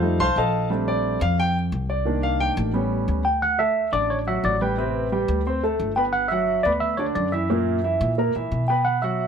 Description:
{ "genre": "Afro-Cuban jazz", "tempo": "177 BPM", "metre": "4/4", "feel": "straight", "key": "Bb major, D major from 3.4 s", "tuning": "A4 = 440 Hz", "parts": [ { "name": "warm concert grand piano", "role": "accompaniment", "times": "0.0-9.3 s", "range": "A#2 to D6", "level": "-24 LUFS", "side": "right 1 dB", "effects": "none" }, { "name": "upright bass", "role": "bass", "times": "0.0-9.3 s", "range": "G1 to B2", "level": "-26 LUFS", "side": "left 1 dB", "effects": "none" }, { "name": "tine electric piano", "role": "melody", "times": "3.2-9.3 s", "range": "B4 to G5", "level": "-23 LUFS", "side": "right 1 dB", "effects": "overdrive, phaser" } ], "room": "moderate studio reverb, RT60 0.9 s", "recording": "none", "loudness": "-20 LUFS", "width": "side -7 dB against mid", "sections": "0.0-3.4 A section; 3.4-9.3 B section", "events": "grand piano solo 0.0-3.4", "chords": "0.0 F7; 0.7 Bbmaj13; 2.1 Cm7; 2.7 A7; 3.4 Dadd9; 4.8 Am11; 5.5 D5; 6.1 G6; 7.5 F#7" }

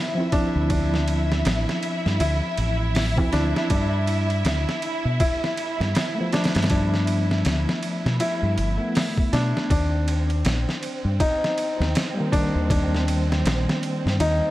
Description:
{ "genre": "trip hop", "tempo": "80 BPM", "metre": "4/4", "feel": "swing 60% on 16ths", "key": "unclear", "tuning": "A4 = 440 Hz", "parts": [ { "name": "warm studio string section", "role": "sustained chords", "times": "0.0-14.5 s", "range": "C4 to E5", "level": "-31 LUFS", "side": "right 1 dB", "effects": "none" }, { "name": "felt-muted upright piano", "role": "arpeggios", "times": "0.0-14.5 s", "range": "D4 to E4", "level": "-28 LUFS", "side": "left 1 dB", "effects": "tape echo" }, { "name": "overdriven tine electric piano", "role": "accompaniment", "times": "0.1-14.5 s", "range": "Eb3 to E4", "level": "-28 LUFS", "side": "equal", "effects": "tremolo, tape echo" }, { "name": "trip hop sampler-style drum kit", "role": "drums", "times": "0.3-14.4 s", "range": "hi-hat, kick drum, ride cymbal, snare drum", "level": "-26 LUFS", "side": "equal", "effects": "small room reverb" }, { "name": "deep dub fingered electric bass", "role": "bass", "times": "0.6-14.4 s", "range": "G1 to B2", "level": "-23 LUFS", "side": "equal", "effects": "none" } ], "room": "little or no reverb", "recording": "vinyl crackle", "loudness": "-20 LUFS", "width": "side -16 dB against mid", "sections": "0.0-14.5 A section", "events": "none", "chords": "0.0 Dm7; 3.7 G7; 9.7 Eb" }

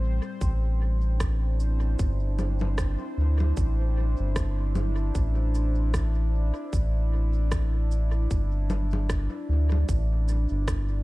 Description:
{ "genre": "ambient dub", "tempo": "76 BPM", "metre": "4/4", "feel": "swing 58% on 16ths", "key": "unclear", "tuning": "A4 = 440 Hz", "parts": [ { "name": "warbly tape-like pad", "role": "sustained chords", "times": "0.0-11.0 s", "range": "A2 to D5", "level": "-35 LUFS", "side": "equal", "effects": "chorus, built-in reverb" }, { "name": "round analog bass", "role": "bass", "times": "0.0-11.0 s", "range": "G1 to D2", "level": "-24 LUFS", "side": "equal", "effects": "none" }, { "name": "bubbling stepped-filter texture", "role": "texture", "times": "0.0-11.0 s", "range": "C4 to C5", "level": "-43 LUFS", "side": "right 1 dB", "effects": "chorus, built-in reverb" }, { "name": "electronic kick drum", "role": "drums", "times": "0.4-10.9 s", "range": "none", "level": "-28 LUFS", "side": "equal", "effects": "small room ambience" }, { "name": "electronic shaker, rim click and congas", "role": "drums", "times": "0.4-10.9 s", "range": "none", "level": "-36 LUFS", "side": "left 1 dB", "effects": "small room ambience, dub echo" } ], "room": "digital ambience", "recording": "dark, warm production", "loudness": "-23 LUFS", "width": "side -20 dB against mid", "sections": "0.0-11.0 A section", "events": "none", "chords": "0.4 Cadd9" }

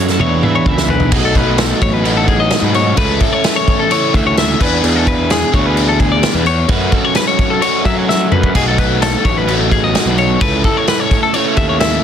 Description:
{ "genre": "math rock and midwest emo", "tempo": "129 BPM", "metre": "4/4", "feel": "straight", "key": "A major", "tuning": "A4 = 440 Hz", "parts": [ { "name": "twelve-string electric guitar", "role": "accompaniment", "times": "0.0-1.1 s", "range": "E2 to F#4", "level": "-19 LUFS", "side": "right 6 dB", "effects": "none" }, { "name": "twelve-string electric guitar", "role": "arpeggios", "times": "0.0-12.0 s", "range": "G#4 to E5", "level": "-18 LUFS", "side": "left 6 dB", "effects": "none" }, { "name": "biting overdriven guitar", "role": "riff", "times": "0.0-12.0 s", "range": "B2 to A4", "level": "-16 LUFS", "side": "right 2 dB", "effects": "none" }, { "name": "loose indie drum kit", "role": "drums", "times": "0.1-11.9 s", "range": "crash cymbal, hi-hat, kick drum, snare drum, splash cymbal, toms", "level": "-16 LUFS", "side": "equal", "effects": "soft clipping on snare" }, { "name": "fuzz picked electric bass", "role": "bass", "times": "0.2-12.0 s", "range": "A1 to F#3", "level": "-18 LUFS", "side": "equal", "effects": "overdrive" } ], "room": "little or no reverb", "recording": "dense, heavily limited modern master", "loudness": "-11 LUFS", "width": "side -8 dB against mid", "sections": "0.0-1.1 A section; 1.1-12.0 B section", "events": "drum fill 0.2-1.1, 8.1-8.6", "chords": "0.2 E7sus4; 1.1 B7; 3.0 A/C#; 4.6 E7; 6.7 F#m7; 8.6 B7; 10.4 A/C#" }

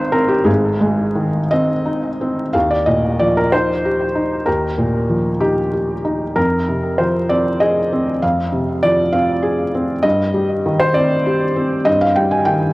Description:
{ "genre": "neoclassical minimalist piano", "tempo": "56-67 BPM (dotted quarters)", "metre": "6/8", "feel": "rubato", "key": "Eb major", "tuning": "A4 = 439 Hz", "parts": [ { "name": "felt-muted upright piano", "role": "solo", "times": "0.0-12.7 s", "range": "Ab1 to Ab5", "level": "-14 LUFS", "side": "equal", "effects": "cassette tape, tape echo" } ], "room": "light reverb, studio reverb", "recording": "home recording on cassette, vinyl crackle", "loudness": "-14 LUFS", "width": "side -20 dB against mid", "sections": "0.0-2.5 A section; 2.5-12.7 B section", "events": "none", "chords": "0.0 Ab; 2.5 Ebadd9; 6.4 Fm; 10.0 Cm/G" }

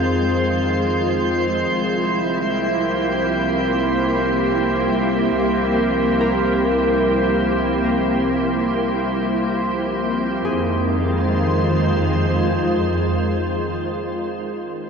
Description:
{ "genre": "ambient", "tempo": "free time", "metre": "none", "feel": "none", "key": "F minor", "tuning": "A4 = 439 Hz", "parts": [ { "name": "soft additive organ-like pad", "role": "sustained chords", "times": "0.0-14.3 s", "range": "Eb3 to C5", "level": "-20 LUFS", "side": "right 1 dB", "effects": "ensemble chorus, built-in reverb" }, { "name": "bright symphonic cello section", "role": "bass", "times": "0.0-13.7 s", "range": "C2 to F2", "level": "-25 LUFS", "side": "equal", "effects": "none" }, { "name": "bowed-like drone", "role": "drone", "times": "0.0-13.8 s", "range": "F3 to C4", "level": "-26 LUFS", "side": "left 1 dB", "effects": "built-in reverb" }, { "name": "drifting glass-harmonics texture", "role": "texture", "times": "0.0-10.5 s", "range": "C5 to C6", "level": "-27 LUFS", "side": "equal", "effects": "chorus, built-in reverb" }, { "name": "concert harp", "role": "arpeggios", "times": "6.2-13.8 s", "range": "Ab4 to Bb4", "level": "-30 LUFS", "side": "left 2 dB", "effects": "none" } ], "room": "wet huge ambient reverb, RT60 8.6 s", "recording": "dark, warm production", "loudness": "-17 LUFS", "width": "side -6 dB against mid", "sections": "0.0-10.4 A section; 10.4-14.8 B section", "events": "none", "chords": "0.0 Fm7; 1.7 C7; 10.4 Fm7" }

